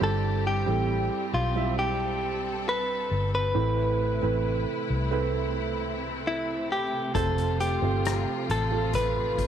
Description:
pop ballad; 67 BPM; 4/4; straight; A minor; A4 = 439 Hz
direct-recorded clean electric guitar; melody; 0.0-9.5 s; E4 to B4; -28 LUFS; left 1 dB
warm upright piano; accompaniment; 0.0-9.5 s; G2 to E5; -31 LUFS; right 12 dB
clear studio string section; sustained chords; 0.0-9.5 s; C3 to B4; -35 LUFS; left 2 dB
vintage muted fingered electric bass; bass; 0.0-9.5 s; F1 to C2; -29 LUFS; left 1 dB
soft-mallet drum kit; drums; 7.1-9.5 s; hi-hat, kick drum, rim click; -33 LUFS; left 4 dB
studio ambience; 1960s-style stereo; -24 LUFS; side -9 dB against mid
0.0-9.5 A section
0.0 C/G; 3.6 Amadd9; 7.1 F
| 0.01 0.90 1.78 2.67 | 3.56 4.45 5.34 6.25 | 7.15 8.05 8.94

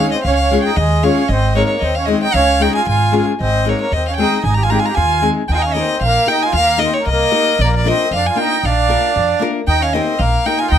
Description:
balkan folk, Balkan wedding band; 114 BPM; 2/4; swing 54% on 16ths; A4 = 442 Hz
rich violin; melody; 0.0-10.8 s; Db5 to Bb5; -17 LUFS; equal
accordion; second line; 0.0-10.8 s; Ab3 to G4; -20 LUFS; right 4 dB; slapback echo
nylon-string guitar; accompaniment; 0.0-10.7 s; Ab3 to Bb4; -19 LUFS; left 5 dB
upright bass; bass; 0.0-10.8 s; Ab1 to F2; -18 LUFS; equal
light reverb; close, detailed microphones; -13 LUFS; side -9 dB against mid
0.0-5.5 A section; 5.5-10.8 B section
0.2 Db; 1.3 Ab; 2.3 Db; 3.4 Ab; 5.5 Eb; 7.6 Bb; 9.7 Eb
| 0.23 0.76 | 1.29 1.81 | 2.34 2.87 | 3.39 3.92 | 4.44 4.97 | 5.49 6.02 | 6.54 7.06 | 7.59 8.11 | 8.63 9.15 | 9.67 10.20 | 10.72

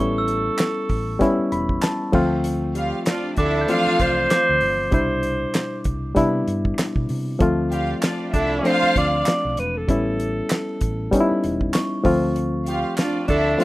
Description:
lush 1970s-style soul; 97 BPM; 4/4; swing 58% on 16ths; D dorian; A4 = 440 Hz
mellow alto saxophone; melody; 0.0-13.6 s; A4 to D5; -23 LUFS; equal
barky reed electric piano; accompaniment; 0.0-13.6 s; B2 to B5; -22 LUFS; left 1 dB; overdrive
hollow-body short-scale fingered electric bass; bass; 0.0-13.5 s; E1 to C3; -27 LUFS; equal
glockenspiel with soft plastic mallets; texture; 0.0-5.2, 11.7-12.3 s; C#6 to G6; -32 LUFS; right 3 dB
damped 70s drum kit; drums; 0.3-13.6 s; crash cymbal, hi-hat, kick drum, snare drum; -24 LUFS; equal
group handclap; percussion; 0.6-13.1 s; -29 LUFS; right 2 dB
rich studio string section; second line; 2.8-13.6 s; D4 to F5; -24 LUFS; right 1 dB
warm horn section; stabs; 2.8-4.0, 7.7-8.9, 12.7-13.6 s; D3 to G4; -28 LUFS; right 1 dB; tape echo
small room ambience; rough home demo mix; -18 LUFS; side -18 dB against mid
0.0-13.6 A section
reed electric piano fill 1.2-2.4
0.0 A7; 2.1 Dm7; 4.9 Cmaj7; 7.4 Dm7; 9.9 A7; 12.0 Dm7
0.58 1.20 1.82 | 2.44 3.07 3.69 4.31 | 4.93 5.55 6.17 6.79 | 7.41 8.03 8.64 9.26 | 9.88 10.50 11.12 11.74 | 12.36 12.98 13.60

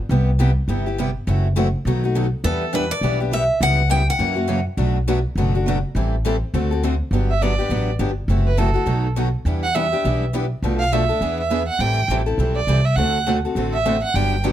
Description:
acoustic string swing (jazz manouche); 205 BPM; 4/4; swing 59% on 8ths; G major; A4 = 440 Hz
picked steel-string acoustic guitar; accompaniment; 0.1-14.5 s; B2 to A4; -24 LUFS; left 5 dB
picked steel-string acoustic guitar; accompaniment; 0.1-14.5 s; B2 to B4; -27 LUFS; right 7 dB
upright bass; bass; 0.1-14.5 s; F#1 to F#2; -20 LUFS; equal
picked steel-string acoustic guitar; melody; 2.4-4.6 s; A4 to G5; -21 LUFS; left 1 dB
clear violin; second line; 7.3-14.4 s; A4 to G5; -22 LUFS; right 4 dB
light reverb; close, detailed microphones; -18 LUFS; side -12 dB against mid
0.0-7.1 A section; 7.1-14.5 B section
violin solo 7.1-14.5
0.1 Cmaj7; 1.3 F#m7b5; 1.9 B7; 2.4 Em7; 3.6 C#m7b5; 4.2 F#7; 4.8 Bm7; 5.9 Am7; 6.5 D7; 7.1 Gmaj7; 8.3 F#m7b5; 8.9 B7; 9.5 Em7; 10.6 Bm7b5; 11.2 E7; 11.8 Am7; 13.0 D7
| 0.10 0.39 0.69 0.98 | 1.27 1.56 1.85 2.15 | 2.44 2.73 3.03 3.32 | 3.61 3.90 4.20 4.49 | 4.78 5.07 5.37 5.66 | 5.95 6.24 6.53 6.83 | 7.12 7.41 7.70 8.00 | 8.29 8.58 8.87 9.17 | 9.46 9.75 10.04 10.34 | 10.63 10.92 11.22 11.51 | 11.80 12.10 12.39 12.68 | 12.98 13.27 13.56 13.86 | 14.15 14.44

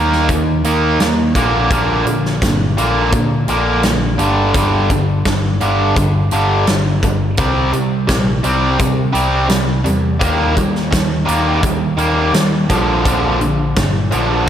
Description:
classic rock; 85 BPM; 4/4; straight; A4 = 440 Hz
overdriven electric guitar; riff; 0.0-14.5 s; G2 to Eb4; -15 LUFS; equal; slapback echo
overdriven picked electric bass; bass; 0.0-14.5 s; G1 to C3; -19 LUFS; equal
big rock drum kit; drums; 0.1-14.3 s; hi-hat, kick drum, snare drum; -19 LUFS; equal
moderate lush hall reverb, RT60 2.8 s; big arena sound; -13 LUFS; side -10 dB against mid
0.0-14.5 A section
0.0 Eb5; 1.4 Bb; 4.2 G5; 7.4 C; 10.2 Eb; 12.7 Bb
0.29 1.00 | 1.71 2.42 3.13 3.84 | 4.54 5.25 5.96 6.67 | 7.38 8.09 8.80 9.51 | 10.22 10.93 11.64 12.35 | 13.06 13.77 14.49

